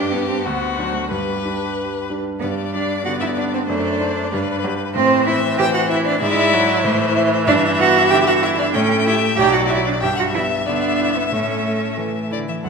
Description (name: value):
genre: quick classical-period movement for piano quintet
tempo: 94 BPM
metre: 2/4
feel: straight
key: G major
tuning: A4 = 440 Hz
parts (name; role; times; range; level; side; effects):
- rich violin; melody; 0.0-12.7 s; F#4 to G5; -24 LUFS; left 8 dB; none
- rich cello; second line; 0.0-12.7 s; D3 to G4; -20 LUFS; right 4 dB; none
- warm violin; second line; 0.0-12.7 s; A4 to G5; -25 LUFS; left 4 dB; none
- clear concert grand piano; accompaniment; 0.0-12.7 s; B1 to E5; -23 LUFS; equal; none
- rich viola; accompaniment; 0.0-12.7 s; E3 to A4; -24 LUFS; right 2 dB; none
room: wet recital hall reverb, RT60 1.6 s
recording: minimal, uncompressed stereo recording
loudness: -16 LUFS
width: side -5 dB against mid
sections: 0.0-2.4 A section; 2.4-12.6 B section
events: none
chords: 0.5 D7; 1.1 G; 3.7 D7/F#; 4.3 G; 5.0 Am; 6.2 E7/G#; 6.8 Am; 7.5 Em7/G; 8.7 A7; 9.4 Bm; 10.0 Em7/G; 11.3 A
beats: 0.46 | 1.11 1.76 | 2.42 3.05 | 3.69 4.32 | 4.95 5.58 | 6.21 6.84 | 7.48 8.11 | 8.75 9.38 | 10.02 10.67 | 11.33 11.99 | 12.64